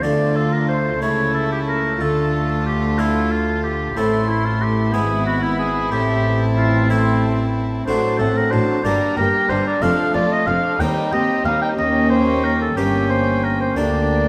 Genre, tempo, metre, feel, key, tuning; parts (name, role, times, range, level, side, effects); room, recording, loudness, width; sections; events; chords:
classical, baroque-style concerto movement with solo episodes; 61 BPM (dotted quarters); 6/8; straight; D minor, G minor from 7.9 s; A4 = 440 Hz
warm chamber violin section; melody; 0.0-14.3 s; Eb5 to C6; -36 LUFS; equal
warm oboe; melody; 0.0-14.3 s; E4 to G5; -24 LUFS; equal
warm chamber violin section; second line; 0.0-14.3 s; C4 to G4; -28 LUFS; equal
harpsichord; accompaniment; 0.0-14.3 s; D2 to A4; -28 LUFS; equal
warm chamber viola section; accompaniment; 0.0-14.3 s; F3 to C4; -28 LUFS; equal
rich chamber double bass section; bass; 0.0-14.3 s; F1 to Eb2; -26 LUFS; equal
warm chamber cello section; bass; 0.0-14.3 s; D2 to D3; -28 LUFS; equal
moderate concert hall reverb, RT60 2.2 s; -19 LUFS; mono
0.0-14.3 A section
0.0 Dm; 1.0 A/C#; 2.0 Dm; 4.0 Am; 4.9 E/G#; 5.9 Am; 7.9 D7/A; 8.9 Gm; 9.8 Dm/F; 10.8 Cm/Eb; 11.8 Eb7; 13.8 Gm/D